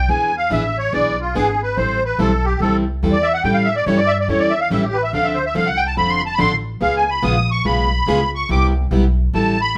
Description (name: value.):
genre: acoustic string swing (jazz manouche).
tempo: 143 BPM.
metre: 4/4.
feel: swing 65% on 8ths.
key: unclear.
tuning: A4 = 440 Hz.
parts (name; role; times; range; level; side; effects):
musette accordion; melody; 0.0-9.8 s; F4 to Eb6; -20 LUFS; equal; none.
upright bass; bass; 0.0-9.8 s; F1 to A2; -24 LUFS; equal; none.
picked plugged-in steel-string acoustic guitar; accompaniment; 0.1-9.8 s; C3 to A4; -23 LUFS; equal; none.
room: moderate studio reverb, RT60 0.7 s.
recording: none.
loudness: -18 LUFS.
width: mono.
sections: 0.0-9.8 A section.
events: accordion solo 0.0-9.8.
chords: 0.1 E7; 1.8 Am7; 3.5 A7; 5.1 Dm7; 6.8 Db7; 8.5 Cmaj7.